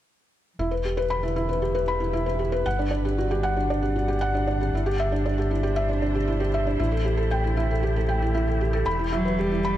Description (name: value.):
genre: electronica.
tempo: 116 BPM.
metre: 4/4.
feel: straight.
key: E minor.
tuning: A4 = 442 Hz.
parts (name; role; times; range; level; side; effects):
dark string quartet; sustained chords; 0.6-9.8 s; E3 to F#5; -36 LUFS; equal; none.
felt-muted upright piano; riff; 0.6-9.8 s; D4 to B5; -25 LUFS; right 1 dB; ping-pong delay.
round analog bass; bass; 0.6-9.8 s; E1 to A1; -26 LUFS; equal; tube saturation.
warm cello; melody; 9.1-9.8 s; F#3 to G3; -25 LUFS; right 1 dB; none.
room: light reverb, small room ambience.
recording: none.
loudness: -22 LUFS.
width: side -12 dB against mid.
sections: 0.6-9.8 A section.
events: fade-in on string quartet 0.6-9.8.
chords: 0.6 Em; 2.7 Gmaj7; 4.7 Cadd9/G; 6.8 Am7; 8.9 Em.